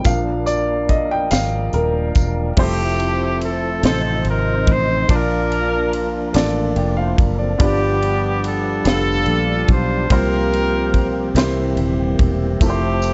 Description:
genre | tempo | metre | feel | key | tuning
slow gospel | 48 BPM (dotted quarters) | 6/8 | straight | F major | A4 = 440 Hz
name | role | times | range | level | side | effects
warm upright piano | accompaniment | 0.0-13.1 s | G2 to A5 | -25 LUFS | equal | none
fingered electric bass | bass | 0.0-13.1 s | Eb1 to C2 | -24 LUFS | equal | none
crisp fusion drum kit | drums | 0.0-13.1 s | crash cymbal, hi-hat, kick drum, ride cymbal, snare drum | -21 LUFS | equal | none
mellow tonewheel organ | sustained chords | 0.1-13.1 s | Eb3 to D5 | -28 LUFS | equal | slow rotary speaker, overdrive, chorus vibrato
tambourine | percussion | 0.1-2.6, 12.6-13.1 s | none | -36 LUFS | equal | none
clear horn section | melody | 2.6-13.1 s | B3 to C5 | -23 LUFS | equal | none
room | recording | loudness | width
light reverb, small room reverb | nothing above 7.9 kHz | -18 LUFS | mono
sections
0.0-2.6 A section; 2.6-13.1 B section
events
upright piano solo 0.0-2.6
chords
0.1 Bb; 2.6 Fmaj7; 3.8 F7; 5.1 Bbmaj7; 7.6 G7; 10.1 C7sus4; 11.4 C7; 12.6 Fmaj7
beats
| 0.06 1.32 | 2.58 3.83 | 5.09 6.34 | 7.60 8.85 | 10.10 11.35 | 12.61

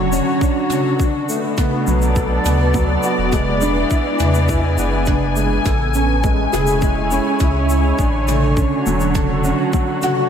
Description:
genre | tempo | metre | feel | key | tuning
piano and strings electronica | 103 BPM | 4/4 | straight | A major | A4 = 439 Hz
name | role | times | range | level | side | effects
muted studio string section | sustained chords | 0.0-10.3 s | B2 to G#5 | -21 LUFS | left 1 dB | sidechain pumping
warm concert grand piano | riff | 0.0-10.3 s | F#3 to A4 | -19 LUFS | right 1 dB | ensemble chorus, ping-pong delay
warm sub bass | bass | 0.0-9.5 s | E1 to E2 | -20 LUFS | equal | sidechain pumping
shaker and toms | drums | 0.1-10.1 s | none | -25 LUFS | right 1 dB | none
electronic kick drum | drums | 0.4-9.8 s | none | -19 LUFS | equal | none
room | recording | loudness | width
moderate lush hall reverb, RT60 1.8 s, small room ambience | dreamy mix soaked in reverb | -15 LUFS | side -8 dB against mid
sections
0.0-10.3 A section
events
none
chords
0.0 Dmaj7; 1.0 Bm7; 3.3 E7; 5.7 Amaj7; 8.0 Dmaj7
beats
0.41 | 1.00 1.58 2.16 2.74 | 3.33 3.91 4.49 5.07 | 5.66 6.24 6.82 7.40 | 7.99 8.57 9.15 9.73

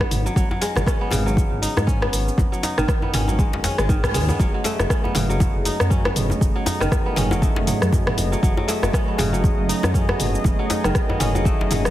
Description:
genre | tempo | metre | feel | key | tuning
afro house | 119 BPM | 4/4 | swing 58% on 16ths | F# dorian | A4 = 436 Hz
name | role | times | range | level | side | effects
kora | arpeggios | 0.0-11.9 s | C#3 to D#4 | -26 LUFS | equal | sidechain pumping, dub echo
dark detuned saw bass | bass | 0.0-11.9 s | D#1 to G#2 | -24 LUFS | equal | tube saturation, sidechain pumping
deep house drum kit | drums | 0.0-11.9 s | hi-hat, rim click, shaker, toms | -24 LUFS | equal | overdrive
electronic kick drum | drums | 0.0-11.6 s | none | -20 LUFS | equal | overdrive
djembe | percussion | 0.1-11.8 s | none | -29 LUFS | left 2 dB | none
warm analog pad | sustained chords | 4.4-11.9 s | F#3 to D#5 | -27 LUFS | right 1 dB | chorus, sidechain pumping
room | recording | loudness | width
light reverb | heavily compressed radio sound, faint mains hum | -18 LUFS | side -14 dB against mid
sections
0.0-4.4 A section; 4.4-11.9 A section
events
band accent 4.0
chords
0.0 G#m7; 4.4 F#m69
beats
| 0.36 0.87 1.37 1.88 | 2.38 2.88 3.39 3.89 | 4.40 4.90 5.41 5.91 | 6.41 6.92 7.42 7.93 | 8.43 8.94 9.44 9.94 | 10.45 10.95 11.46

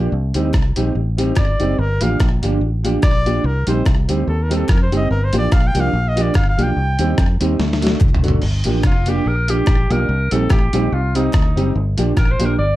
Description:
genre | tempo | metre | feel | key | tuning
ska | 145 BPM | 4/4 | swing 55% on 8ths | G minor | A4 = 444 Hz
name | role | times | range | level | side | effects
mellow electric guitar | accompaniment | 0.0-12.6 s | F3 to Eb4 | -23 LUFS | right 4 dB | lush chorus, slapback echo
dark upright piano | stabs | 0.0-12.6 s | A3 to G4 | -24 LUFS | left 2 dB | slapback echo
fingered electric bass | bass | 0.0-12.8 s | F1 to F2 | -19 LUFS | equal | none
lo-fi sampler-style drum kit | drums | 0.3-12.5 s | crash cymbal, hi-hat, kick drum, rim click, snare drum, toms | -17 LUFS | equal | none
group handclap | percussion | 0.5-12.3 s | none | -38 LUFS | left 2 dB | slapback echo
clear trumpet | melody | 1.4-7.3 s | A4 to G5 | -23 LUFS | left 1 dB | slapback echo
bright alto saxophone | melody | 8.9-12.8 s | Eb4 to D5 | -23 LUFS | left 1 dB | slapback echo
room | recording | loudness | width
moderate small room reverb, RT60 0.5 s | dark, warm production | -14 LUFS | side -16 dB against mid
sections
0.0-8.4 A section; 8.4-12.8 A section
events
trumpet solo 0.0-8.4; drum fill 7.6-8.4; alto saxophone solo 8.4-12.8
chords
0.1 Cm; 1.8 Gm7; 3.4 Cm; 5.1 Gm7; 6.8 Cm; 7.6 D; 8.4 Gm7; 10.1 Cm; 11.8 Gm7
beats
| 0.13 0.54 0.96 1.37 | 1.79 2.20 2.62 3.03 | 3.45 3.86 4.28 4.69 | 5.11 5.52 5.94 6.35 | 6.77 7.18 7.60 8.01 | 8.43 8.84 9.26 9.67 | 10.09 10.50 10.92 11.34 | 11.75 12.16 12.58

